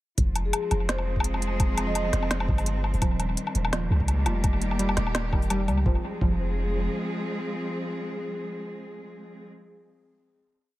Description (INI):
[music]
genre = half-time drum and bass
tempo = 169 BPM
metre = 4/4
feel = swing 55% on 16ths, half-time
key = F minor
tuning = A4 = 440 Hz
[part]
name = rich studio cello section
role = sustained chords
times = 0.2-9.5 s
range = Eb3 to Ab4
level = -32 LUFS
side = equal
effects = vintage 12-bit sampler grit, sidechain pumping
[part]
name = long sustained 808-style bass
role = bass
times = 0.2-6.9 s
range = Eb1 to Db2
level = -27 LUFS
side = equal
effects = none
[part]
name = electronic kick drum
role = drums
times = 0.2-6.3 s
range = none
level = -25 LUFS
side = equal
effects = none
[part]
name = organic electronic drum kit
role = drums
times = 0.2-5.8 s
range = hi-hat, snare drum, woodblock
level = -31 LUFS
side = left 1 dB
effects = dub echo
[part]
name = vibraphone with soft mallets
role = melody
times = 0.5-2.2 s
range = Ab4 to Eb5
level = -35 LUFS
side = equal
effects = dub echo
[part]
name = warbly dusty pluck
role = arpeggios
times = 3.0-6.3 s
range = Eb3 to F4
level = -33 LUFS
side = right 2 dB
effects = chorus, cassette tape, dub echo
[sound]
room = light reverb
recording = echo-heavy mix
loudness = -24 LUFS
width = side -16 dB against mid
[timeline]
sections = 0.2-5.9 drop; 5.9-8.7 final chord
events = drop 0.2-5.9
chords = 0.2 Fm; 3.0 Eb; 5.9 Fm